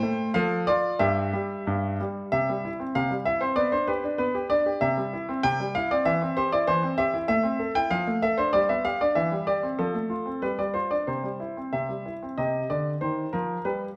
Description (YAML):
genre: classical-period piano sonatina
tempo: 90-99 BPM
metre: 2/4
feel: rubato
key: C major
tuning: A4 = 445 Hz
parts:
  - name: clear concert grand piano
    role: solo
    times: 0.0-14.0 s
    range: G2 to G5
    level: -26 LUFS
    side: equal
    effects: none
room: moderate recital hall reverb, RT60 1.5 s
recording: none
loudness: -26 LUFS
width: mono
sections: 0.0-2.3 A section; 2.3-12.4 B section; 12.4-14.0 C section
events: none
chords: 0.3 Dm/F; 1.0 N.C.; 2.3 C; 3.6 G/B; 4.8 C; 6.1 C/E; 7.3 Am; 7.9 Dm/F; 8.5 G; 9.2 C/E; 9.8 F; 10.4 G5; 11.1 C; 12.4 Cm